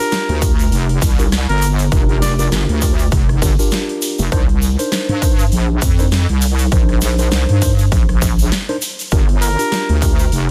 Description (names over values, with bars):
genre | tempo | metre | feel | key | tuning
glitch hop | 100 BPM | 4/4 | swing 57% on 16ths | C minor | A4 = 441 Hz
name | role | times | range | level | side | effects
warm trumpet | melody | 0.0-2.5, 9.4-10.0 s | Bb4 to D5 | -26 LUFS | equal | digital delay
mellow tine electric piano | stabs | 0.0-10.1 s | D4 to C5 | -26 LUFS | equal | sidechain pumping, digital delay
dubstep drum kit | drums | 0.1-10.5 s | hi-hat, rim click, snare drum | -27 LUFS | equal | small room reverb
tube shaker | percussion | 0.1-10.5 s | none | -29 LUFS | equal | none
wobble bass | bass | 0.3-10.5 s | F1 to G2 | -18 LUFS | equal | chorus, tube saturation
electronic kick drum | drums | 0.4-10.2 s | none | -18 LUFS | equal | small room reverb
room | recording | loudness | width
little or no reverb | dense, heavily limited modern master | -15 LUFS | mono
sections
0.0-10.5 A section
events
none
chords
0.0 Gm7; 4.3 Cm9; 9.1 Gm7